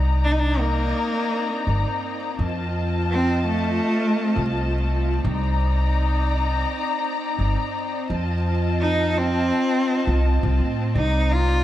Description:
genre	trip hop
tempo	84 BPM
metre	4/4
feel	swing 53% on 16ths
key	C dorian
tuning	A4 = 440 Hz
part	dark symphonic string section	sustained chords	0.0-11.6 s	Eb4 to Bb5	-26 LUFS	left 2 dB	none
part	upright bass	bass	0.0-11.6 s	G1 to A2	-22 LUFS	equal	tube saturation
part	bowed-like drone	texture	0.5-11.6 s	C4	-33 LUFS	right 1 dB	built-in reverb
part	rich cello	melody	0.2-11.6 s	A3 to F4	-24 LUFS	equal	vintage 12-bit sampler grit, tape echo
room	light reverb, studio reverb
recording	vinyl crackle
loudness	-20 LUFS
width	side -13 dB against mid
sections	0.0-11.6 A section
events	none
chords	0.0 Cm9; 2.4 F7; 5.2 Cm9; 8.1 F7; 11.0 Cm9

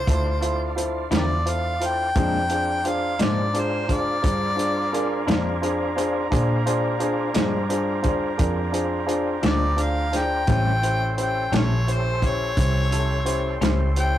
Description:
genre	slow blues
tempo	58 BPM (dotted quarters)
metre	12/8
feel	straight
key	unclear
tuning	A4 = 440 Hz
part	clear harmonica	melody	0.0-14.2 s	G4 to G5	-25 LUFS	left 1 dB	overdrive
part	tonewheel organ	sustained chords	0.0-14.2 s	A3 to C5	-34 LUFS	equal	slow rotary speaker, chorus vibrato
part	vintage muted fingered electric bass	bass	0.0-14.2 s	A1 to Bb2	-26 LUFS	equal	none
part	warm baby grand piano	accompaniment	0.1-14.2 s	C#4 to C5	-26 LUFS	equal	none
part	warm soul drum kit	drums	0.1-14.1 s	hi-hat, kick drum, snare drum	-25 LUFS	equal	none
part	clean electric guitar	accompaniment	1.1-13.8 s	A2 to E4	-28 LUFS	left 3 dB	harmonic tremolo
part	clear horn section	sustained chords	2.2-14.2 s	C#4 to B#5	-34 LUFS	right 4 dB	none
room	light reverb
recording	rough rehearsal-room recording, warm saturation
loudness	-20 LUFS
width	side -12 dB against mid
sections	0.0-14.2 A section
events	harmonica solo 0.0-14.2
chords	0.0 Dm9; 2.2 Bb7; 10.5 A7#9

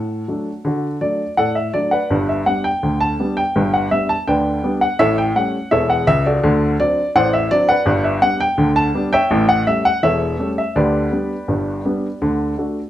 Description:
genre	ragtime piano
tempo	83 BPM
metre	2/4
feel	straight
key	G major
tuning	A4 = 440 Hz
part	dark baby grand piano	solo	0.0-12.9 s	E1 to A5	-15 LUFS	equal	none
room	moderate studio reverb, RT60 0.6 s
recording	none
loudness	-15 LUFS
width	side -12 dB against mid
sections	0.0-2.1 A section; 2.1-12.9 B section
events	none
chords	0.0 D; 2.1 G; 5.0 A7; 6.4 D7; 7.9 G; 9.3 A7; 10.8 G/D; 12.2 D

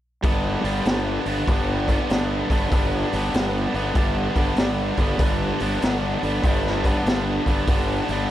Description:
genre	blues rock power trio and southern rock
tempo	97 BPM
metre	4/4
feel	swing 65% on 8ths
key	G major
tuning	A4 = 441 Hz
part	tight distorted guitar	riff	0.2-8.3 s	G2 to D4	-24 LUFS	equal	distortion
part	fuzz fingered electric bass	bass	0.2-8.3 s	G1	-26 LUFS	equal	overdrive
part	raw garage drum kit	drums	0.2-8.2 s	hi-hat, kick drum, snare drum	-24 LUFS	equal	none
room	light reverb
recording	none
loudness	-20 LUFS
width	side -12 dB against mid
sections	0.2-8.3 A section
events	none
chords	0.2 G

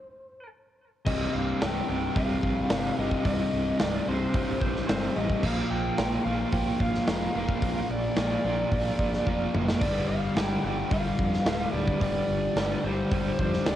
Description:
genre	hard rock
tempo	110 BPM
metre	4/4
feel	straight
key	unclear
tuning	A4 = 440 Hz
part	lead guitar through a small cranked amp	melody	0.0-13.8 s	C5 to G5	-32 LUFS	left 1 dB	overdrive, cassette tape, tape echo
part	biting overdriven guitar	riff	1.1-13.8 s	C2 to Bb3	-31 LUFS	right 6 dB	tremolo, cassette tape
part	overdriven electric guitar	riff	1.1-13.8 s	C2 to Bb3	-31 LUFS	left 6 dB	cassette tape
part	fuzz fingered electric bass	bass	1.1-13.8 s	C1 to F2	-34 LUFS	equal	overdrive
part	big rock drum kit	drums	1.1-13.8 s	crash cymbal, hi-hat, kick drum, snare drum, toms	-30 LUFS	equal	none
room	light reverb, small room ambience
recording	home recording on cassette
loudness	-24 LUFS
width	side -12 dB against mid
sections	0.0-1.1 A section; 1.1-13.8 B section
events	stop 0.0-1.1; drum fill 9.3-9.8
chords	0.0 N.C.; 1.1 Cm; 5.4 Bb; 9.8 G5

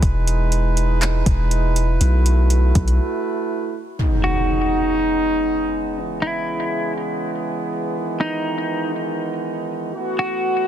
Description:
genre	hip hop, atmospheric cloud-rap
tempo	121 BPM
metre	4/4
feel	half-time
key	unclear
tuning	A4 = 444 Hz
part	clear brass ensemble	sustained chords	0.0-10.7 s	C#3 to B4	-22 LUFS	right 2 dB	sidechain pumping
part	long sustained 808-style bass	bass	0.0-3.0 s	E1 to B1	-16 LUFS	equal	none
part	smooth R&B drum kit	drums	0.0-3.0 s	handclaps, hi-hat, kick drum	-20 LUFS	equal	overdrive
part	impact	sound effects	4.0-6.0 s	none	-24 LUFS	equal	none
part	semi-hollow electric guitar	melody	4.2-10.7 s	D#4 to F#4	-25 LUFS	left 1 dB	low-pass filter, ping-pong delay
room	digital ambience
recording	dense, heavily limited modern master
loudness	-18 LUFS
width	side -10 dB against mid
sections	0.0-4.0 A section; 4.0-10.7 B section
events	break 3.0-4.0; impact 4.0-6.0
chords	0.0 Emaj7; 2.0 B7sus4; 4.0 C#9sus4; 6.0 C#m7; 8.0 Emaj7; 9.9 B7sus4

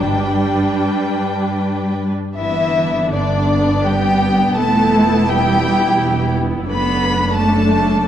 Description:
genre	classical, slow romantic movement for string orchestra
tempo	75-87 BPM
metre	3/4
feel	rubato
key	G major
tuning	A4 = 438 Hz
part	rich chamber violin section	melody	0.0-8.1 s	D5 to B5	-20 LUFS	left 2 dB	none
part	clear chamber violin section	second line	0.0-8.1 s	D4 to B4	-24 LUFS	left 3 dB	none
part	rich chamber viola section	accompaniment	0.0-8.1 s	G3 to E4	-20 LUFS	equal	none
part	warm chamber cello section	bass	0.0-8.1 s	G2 to B3	-20 LUFS	right 2 dB	none
part	warm chamber double bass section	bass	0.0-8.1 s	E1 to G1	-22 LUFS	right 3 dB	none
room	wet concert hall reverb, RT60 1.9 s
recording	dark, warm production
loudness	-14 LUFS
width	side -10 dB against mid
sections	0.0-2.4 A section; 2.4-8.1 B section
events	none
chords	0.0 G; 4.6 Em; 6.7 D/F#

